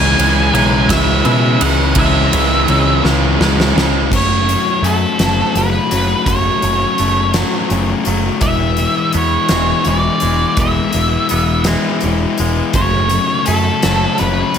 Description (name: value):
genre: quiet-loud alternative rock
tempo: 56 BPM (dotted quarters)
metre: 6/8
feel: straight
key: F# minor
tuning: A4 = 435 Hz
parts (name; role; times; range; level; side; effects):
- octave-fuzz lead guitar; melody; 0.0-14.6 s; A4 to G#5; -18 LUFS; right 1 dB; distortion, digital delay
- rich studio string section; sustained chords; 0.0-4.1 s; C#3 to E4; -27 LUFS; equal; none
- overdriven electric guitar; riff; 0.0-4.1 s; C#3 to C#4; -19 LUFS; right 15 dB; none
- thick fuzz guitar; riff; 0.0-14.6 s; F#2 to F#4; -18 LUFS; left 9 dB; distortion
- growling picked electric bass; bass; 0.0-14.4 s; E1 to B2; -17 LUFS; right 1 dB; overdrive
- huge arena drum kit; drums; 0.2-14.6 s; crash cymbal, hi-hat, kick drum, ride cymbal, snare drum; -20 LUFS; right 1 dB; none
- twangy electric guitar; arpeggios; 4.1-14.6 s; F#2 to B3; -24 LUFS; right 6 dB; phaser
room: small room ambience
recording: none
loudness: -12 LUFS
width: side -8 dB against mid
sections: 0.0-4.1 A section; 4.1-14.6 B section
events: drum fill 3.0-4.1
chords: 0.0 C#m; 4.1 F#m; 8.4 E; 12.8 F#m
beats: 0.90 | 1.97 3.04 | 4.12 5.19 | 6.27 7.35 | 8.43 9.51 | 10.59 11.67 | 12.75 13.83